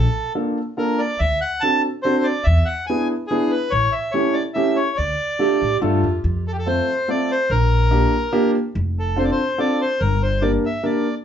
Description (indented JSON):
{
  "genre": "musette waltz",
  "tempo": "143 BPM",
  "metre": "3/4",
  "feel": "straight",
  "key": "D harmonic minor, F major from 6.2 s",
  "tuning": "A4 = 441 Hz",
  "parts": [
    { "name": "bandoneon", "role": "melody", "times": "0.0-11.1 s", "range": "G4 to A5", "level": "-22 LUFS", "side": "equal", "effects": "none" },
    { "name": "upright bass", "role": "bass", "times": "0.0-10.6 s", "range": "F1 to A2", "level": "-20 LUFS", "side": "equal", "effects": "none" },
    { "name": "clear upright piano", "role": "accompaniment", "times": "0.4-11.1 s", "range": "A3 to Bb4", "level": "-21 LUFS", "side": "equal", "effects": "none" },
    { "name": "mellow clarinet", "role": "second line", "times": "5.4-6.2 s", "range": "F4 to G4", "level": "-21 LUFS", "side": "right 6 dB", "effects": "tape echo" }
  ],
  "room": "wet small room reverb, RT60 0.5 s",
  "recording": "heard from further back in the room, nothing above 7.8 kHz",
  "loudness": "-17 LUFS",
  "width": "side -9 dB against mid",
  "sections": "0.0-6.2 A section; 6.2-11.2 B section",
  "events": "none",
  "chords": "0.0 Bbmaj7; 1.2 D7; 2.5 E7; 3.7 A7; 5.0 Dm; 6.2 F; 7.5 Bb6; 8.7 F6; 10.0 Gm",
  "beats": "0.35 0.78 | 1.20 1.62 2.05 | 2.47 2.89 3.31 | 3.72 4.14 4.55 | 4.97 5.39 5.81 | 6.24 6.66 7.08 | 7.50 7.91 8.33 | 8.74 9.16 9.58 | 10.00 10.42 10.84"
}